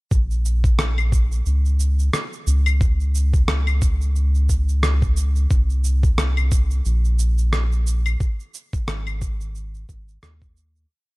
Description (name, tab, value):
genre	organic downtempo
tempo	89 BPM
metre	4/4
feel	swing 57% on 16ths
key	Bb minor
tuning	A4 = 440 Hz
part	round analog bass	bass	0.1-10.9 s	Ab1 to Eb2	-19 LUFS	equal	tube saturation, sidechain pumping
part	electronic kick drum	drums	0.1-10.5 s	none	-20 LUFS	equal	none
part	electronic shaker, rim click and claves	drums	0.1-10.9 s	none	-26 LUFS	equal	none
room	little or no reverb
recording	none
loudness	-18 LUFS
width	side -23 dB against mid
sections	0.1-10.9 groove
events	fade-out 7.3-10.9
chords	none